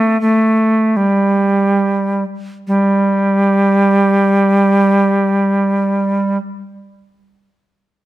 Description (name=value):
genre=classical, baroque-style fantasia for unaccompanied recorder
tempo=free time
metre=none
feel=none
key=unclear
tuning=A4 = 440 Hz
part: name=bright bass recorder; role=solo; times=0.0-6.4 s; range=G3 to A3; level=-12 LUFS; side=right 1 dB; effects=none
room=light reverb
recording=close, detailed microphones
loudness=-12 LUFS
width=side -15 dB against mid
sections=0.0-2.7 A section; 2.7-8.0 B section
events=slowing down 0.0-2.7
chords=none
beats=free time